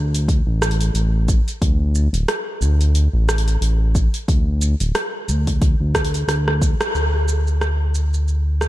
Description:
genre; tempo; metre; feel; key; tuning
organic downtempo; 90 BPM; 4/4; swing 57% on 16ths; unclear; A4 = 439 Hz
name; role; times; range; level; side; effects
smooth gliding synth bass; bass; 0.0-8.7 s; D1 to D2; -17 LUFS; equal; sidechain pumping
deep house drum kit; drums; 0.1-8.7 s; hi-hat, rim click, shaker; -24 LUFS; right 1 dB; none
electronic kick drum; drums; 0.3-6.8 s; none; -18 LUFS; equal; none
room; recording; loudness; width
light reverb; dark, warm production; -16 LUFS; side -16 dB against mid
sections
0.0-6.9 A section; 6.9-8.7 B section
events
drum fill 6.3-6.9; band accent 6.8-7.1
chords
none

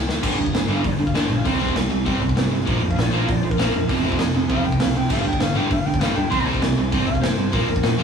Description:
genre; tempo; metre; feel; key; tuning
punk rock; 197 BPM; 4/4; straight; G minor; A4 = 437 Hz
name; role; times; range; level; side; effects
hollow-body short-scale picked electric bass; bass; 0.0-8.0 s; F1 to G2; -27 LUFS; equal; none
raw garage drum kit; drums; 0.1-7.9 s; crash cymbal, hi-hat, kick drum, snare drum; -23 LUFS; left 1 dB; none
crunchy overdriven guitar; riff; 0.2-8.0 s; F2 to C4; -26 LUFS; left 4 dB; none
distorted electric guitar; riff; 0.2-8.0 s; F2 to C4; -22 LUFS; right 4 dB; distortion
warm clarinet; melody; 0.7-8.0 s; G4 to C6; -28 LUFS; left 2 dB; none
room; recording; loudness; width
moderate small room reverb, RT60 0.5 s; rough rehearsal-room recording, warm saturation, studio reverb; -18 LUFS; side -6 dB against mid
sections
0.2-8.0 A section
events
drum fill 0.0; clarinet solo 0.2-8.0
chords
0.2 G5; 1.5 C5; 2.7 Bb5; 3.9 F5; 5.1 G5; 6.3 C5

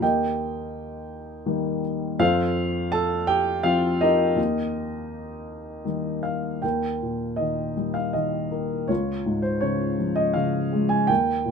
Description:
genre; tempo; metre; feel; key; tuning
classical, lyrical solo piano; 82 BPM; 3/4; rubato; unclear; A4 = 440 Hz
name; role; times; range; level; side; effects
dark upright piano; solo; 0.0-11.5 s; Db2 to A5; -22 LUFS; equal; none
room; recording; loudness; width
light reverb; minimal, uncompressed stereo recording; -22 LUFS; side -6 dB against mid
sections
0.0-6.6 A section; 6.6-11.5 B section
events
none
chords
0.0 Eb; 2.2 F; 4.4 Eb; 8.9 Db

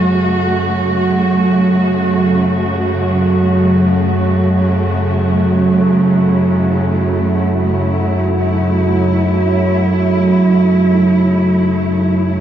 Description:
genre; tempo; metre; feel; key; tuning
dark ambient drone; free time; none; none; F# minor; A4 = 437 Hz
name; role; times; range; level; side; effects
warm chamber cello section; sustained chords; 0.0-12.4 s; C#3 to F#4; -17 LUFS; right 1 dB; none
analog drone; drone; 0.0-12.4 s; F#2 to F#3; -13 LUFS; right 1 dB; chorus
room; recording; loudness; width
wet huge ambient reverb, RT60 7.5 s; worn, warbling old tape, cassette tape, warbly pitch drift, small room reverb; -12 LUFS; side -10 dB against mid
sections
0.0-12.4 A section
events
none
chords
0.0 F#m

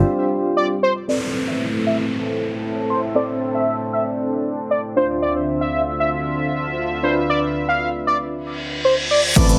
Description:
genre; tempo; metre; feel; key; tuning
dance-pop; 116 BPM; 4/4; straight; A minor; A4 = 440 Hz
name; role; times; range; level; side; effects
soft electric-piano-like synth keys; accompaniment; 0.0-9.6 s; C4 to C5; -26 LUFS; equal; chorus, tremolo, sidechain pumping, low-pass filter
sweeping resonant pad; sustained chords; 0.0-9.3 s; D2 to E5; -26 LUFS; equal; chorus, sidechain pumping, low-pass filter
octave-doubled lead; melody; 0.6-9.5 s; C5 to F5; -23 LUFS; equal; chorus, phaser, sidechain pumping, low-pass filter, delay
downlifter and reverse cymbal; sound effects; 1.1-5.2, 8.5-9.4 s; none; -27 LUFS; equal; none
vintage slap bass; bass; 9.4-9.6 s; A1; -18 LUFS; equal; sidechain pumping
punchy analog drum machine; drums; 9.4-9.6 s; crash cymbal, hi-hat, kick drum, shaker; -16 LUFS; equal; overdrive
room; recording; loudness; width
light reverb, digital ambience; none; -21 LUFS; mono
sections
0.0-1.1 A section; 1.1-9.4 B section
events
drop 0.0-1.1; break 0.1-1.1; filter sweep 1.1-9.4; reverse cymbal 8.5-9.4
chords
0.0 G7sus4; 1.1 Amadd9; 5.0 Dm7

